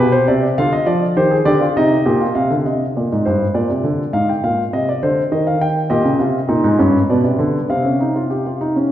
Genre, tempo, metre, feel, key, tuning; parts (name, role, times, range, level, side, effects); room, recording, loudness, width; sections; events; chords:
classical, baroque-style 3-part fugue for grand piano; 101 BPM; 3/4; straight; A4 = 441 Hz
dark grand piano; solo; 0.0-8.9 s; G2 to G5; -14 LUFS; equal
wet recital hall reverb, RT60 1.8 s; recorded in a church or concert hall; -14 LUFS; side -12 dB against mid
0.0-2.4 A section; 2.4-8.9 B section
0.0 G/B; 0.6 G5/D; 1.8 Cm; 2.4 Ab/C (rootless); 3.5 Bbadd9; 4.1 Fm/Ab; 5.3 Eb; 5.9 Gdim/Bb; 7.1 Bm; 7.7 Csus4